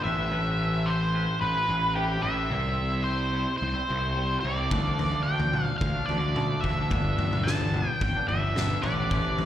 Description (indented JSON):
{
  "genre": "quiet-loud alternative rock",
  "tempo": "109 BPM",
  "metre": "4/4",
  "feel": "straight",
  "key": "D dorian",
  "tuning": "A4 = 439 Hz",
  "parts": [
    { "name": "octave-fuzz lead guitar", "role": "melody", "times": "0.0-9.5 s", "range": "G4 to A5", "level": "-29 LUFS", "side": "equal", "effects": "distortion, slapback echo" },
    { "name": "twangy electric guitar", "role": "arpeggios", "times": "0.0-9.5 s", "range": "G2 to B4", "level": "-34 LUFS", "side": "equal", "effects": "spring reverb, slapback echo" },
    { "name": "fuzz picked electric bass", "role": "bass", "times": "0.1-9.5 s", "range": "G1 to D2", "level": "-28 LUFS", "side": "equal", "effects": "overdrive" },
    { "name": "loose indie drum kit", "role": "drums", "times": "4.7-9.5 s", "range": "kick drum, snare drum, toms", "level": "-29 LUFS", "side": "left 1 dB", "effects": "none" }
  ],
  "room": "little or no reverb",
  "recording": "live gig heard through the venue's PA, recital hall reverb",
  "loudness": "-24 LUFS",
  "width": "side -11 dB against mid",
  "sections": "0.0-9.5 A section",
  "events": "none",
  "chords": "0.1 Amadd9; 2.5 C; 4.7 Dm; 6.9 G; 8.8 Amadd9"
}